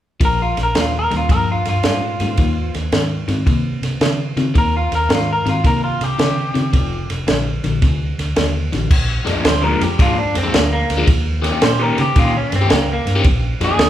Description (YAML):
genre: electric blues shuffle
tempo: 110 BPM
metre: 4/4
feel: swing 66% on 8ths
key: Bb mixolydian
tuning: A4 = 441 Hz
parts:
  - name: electric guitar through a small old amp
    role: melody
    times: 0.2-13.9 s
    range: Bb3 to C5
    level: -20 LUFS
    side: equal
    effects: none
  - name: crunchy overdriven guitar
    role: riff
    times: 0.2-13.8 s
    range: F2 to G4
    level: -22 LUFS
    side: left 3 dB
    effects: phaser
  - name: vintage muted fingered electric bass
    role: bass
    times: 0.2-13.9 s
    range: F1 to Db3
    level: -21 LUFS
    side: equal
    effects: none
  - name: compact cocktail drum kit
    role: drums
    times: 0.2-13.9 s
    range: crash cymbal, kick drum, ride cymbal, snare drum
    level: -18 LUFS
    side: right 1 dB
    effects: none
room: moderate large studio reverb, RT60 1.4 s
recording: band playing live in one room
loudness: -15 LUFS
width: side -12 dB against mid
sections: 0.2-8.9 A section; 8.9-13.9 B section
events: clean electric guitar solo 8.9-13.9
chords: 0.2 Bb5; 2.4 Eb7(no3); 6.7 F7(no3); 8.9 Bb7; 11.1 Eb7; 13.2 Bb7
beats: | 0.20 0.75 1.29 1.83 | 2.38 2.92 3.46 4.01 | 4.55 5.09 5.64 6.18 | 6.73 7.27 7.81 8.36 | 8.90 9.44 9.99 10.53 | 11.07 11.62 12.16 12.70 | 13.24 13.79